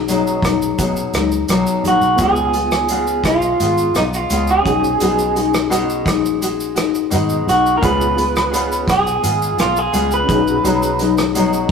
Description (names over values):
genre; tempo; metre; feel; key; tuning
indie pop, bedroom pop; 85 BPM; 4/4; straight; B lydian; A4 = 440 Hz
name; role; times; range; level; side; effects
nylon-string guitar; accompaniment; 0.0-11.7 s; B2 to F#4; -18 LUFS; left 5 dB; warbly pitch drift
reed electric piano; accompaniment; 0.0-11.7 s; B3 to G#4; -26 LUFS; right 2 dB; fast tremolo
vintage muted picked electric bass; bass; 0.0-11.7 s; G#1 to B2; -24 LUFS; right 1 dB; none
loose indie drum kit; drums; 0.1-11.7 s; hi-hat, kick drum, rim click, shaker; -22 LUFS; right 1 dB; none
electric guitar through a small old amp; melody; 1.9-11.1 s; D#4 to B4; -17 LUFS; right 2 dB; none
room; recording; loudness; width
wet stone room reverb, RT60 1.1 s; rough rehearsal-room recording, tube saturation; -14 LUFS; side -6 dB against mid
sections
0.0-11.7 A section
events
clean electric guitar solo 0.0-11.7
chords
0.0 B6; 2.2 C#7; 4.7 B6; 7.8 C#7; 10.3 B6